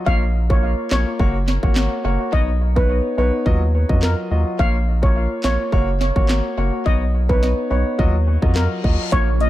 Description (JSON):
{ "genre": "dancehall", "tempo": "106 BPM", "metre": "4/4", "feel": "straight", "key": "Eb minor", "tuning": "A4 = 438 Hz", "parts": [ { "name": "warm grand piano", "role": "accompaniment", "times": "0.0-9.3 s", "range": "Gb3 to Eb5", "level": "-24 LUFS", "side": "left 1 dB", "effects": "tape echo" }, { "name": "steel pan", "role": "melody", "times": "0.1-9.5 s", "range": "Bb4 to F5", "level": "-25 LUFS", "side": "equal", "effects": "tape echo" }, { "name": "saturated sub bass", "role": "bass", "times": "0.1-9.5 s", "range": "Gb1 to F2", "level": "-19 LUFS", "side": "equal", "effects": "none" }, { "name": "island pop drum kit", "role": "drums", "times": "0.1-9.5 s", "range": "handclaps, hi-hat, kick drum, rim click, snare drum", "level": "-20 LUFS", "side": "equal", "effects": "none" }, { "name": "reverse cymbal", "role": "sound effects", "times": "8.5-9.1 s", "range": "none", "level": "-33 LUFS", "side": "left 6 dB", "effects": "none" }, { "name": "airy breathy pad", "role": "sustained chords", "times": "9.3-9.5 s", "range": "Db3 to F4", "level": "-26 LUFS", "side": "right 3 dB", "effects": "chorus, sidechain pumping" } ], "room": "light reverb, digital ambience", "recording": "echo-heavy mix", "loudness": "-16 LUFS", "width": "side -14 dB against mid", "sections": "0.0-9.1 A section", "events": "reverse cymbal 8.5-9.1", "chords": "0.1 Bbm; 1.2 Gb; 2.3 Badd9; 3.5 Ebmadd9; 4.6 Bbm; 5.7 Gb; 6.9 Badd9; 8.0 Ebmadd9" }